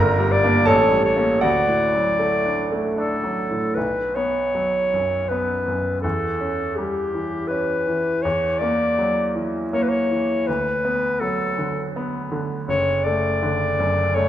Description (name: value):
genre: classical, romantic duo for clarinet and grand piano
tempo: 81 BPM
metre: 3/4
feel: rubato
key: D major, B minor from 3.8 s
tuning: A4 = 442 Hz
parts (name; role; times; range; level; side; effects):
- bright clarinet; melody; 0.0-14.3 s; G4 to D5; -21 LUFS; left 2 dB; none
- bright grand piano; accompaniment; 0.0-14.3 s; F#1 to Bb5; -22 LUFS; right 1 dB; none
room: wet recital hall reverb, RT60 1.5 s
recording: recorded in a church or concert hall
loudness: -19 LUFS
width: side -11 dB against mid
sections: 0.0-3.8 A section; 3.8-14.3 B section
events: none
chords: 0.0 Gm; 0.7 A7b9; 1.4 D; 3.8 B5; 6.0 C#dim/E; 8.2 F#7/E; 10.5 Bm/D; 12.7 D/F#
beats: 0.68 | 1.43 2.20 2.97 | 3.76 4.54 5.29 | 6.04 6.78 7.51 | 8.25 8.98 9.73 | 10.47 11.21 11.94 | 12.67 13.41 14.16